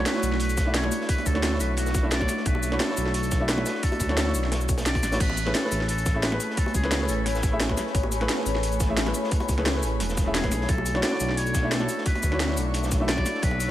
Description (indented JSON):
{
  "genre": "liquid drum and bass",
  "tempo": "175 BPM",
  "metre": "4/4",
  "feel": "straight",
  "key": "B dorian",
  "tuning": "A4 = 440 Hz",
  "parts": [
    { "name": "trumpet with metal mute", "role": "melody", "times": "0.0-7.6, 10.3-13.7 s", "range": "E4 to D5", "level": "-32 LUFS", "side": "equal", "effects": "tape echo" },
    { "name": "warm grand piano", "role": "accompaniment", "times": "0.0-13.7 s", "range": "A3 to E5", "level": "-29 LUFS", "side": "equal", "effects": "tape echo" },
    { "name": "glassy FM pad", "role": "sustained chords", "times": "0.0-13.7 s", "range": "A3 to C#6", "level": "-33 LUFS", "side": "equal", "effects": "ensemble chorus, built-in reverb, sidechain pumping" },
    { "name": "smooth gliding synth bass", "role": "bass", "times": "0.0-13.7 s", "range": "E1 to D2", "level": "-28 LUFS", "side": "equal", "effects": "none" },
    { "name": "crunchy breakbeat drum kit", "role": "drums", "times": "0.1-13.7 s", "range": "hi-hat, snare drum", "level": "-36 LUFS", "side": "equal", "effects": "high-pass filter on hats, small room ambience, high-pass filter on snare, high-pass filter on room" },
    { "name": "drum and bass drum kit", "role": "drums", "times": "0.1-13.7 s", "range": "cabasa, crash cymbal, hi-hat, snare drum", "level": "-29 LUFS", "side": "equal", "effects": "small room ambience" },
    { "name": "electronic kick drum", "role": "drums", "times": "0.6-13.5 s", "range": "none", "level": "-26 LUFS", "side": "equal", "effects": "small room ambience" },
    { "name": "bongos", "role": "percussion", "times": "0.8-13.6 s", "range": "none", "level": "-37 LUFS", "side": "left 1 dB", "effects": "none" }
  ],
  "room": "light reverb, small room ambience",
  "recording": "none",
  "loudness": "-22 LUFS",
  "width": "side -13 dB against mid",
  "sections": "0.0-13.7 A section",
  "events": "none",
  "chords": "0.0 Bm11; 5.2 Amaj9; 10.7 Bm11"
}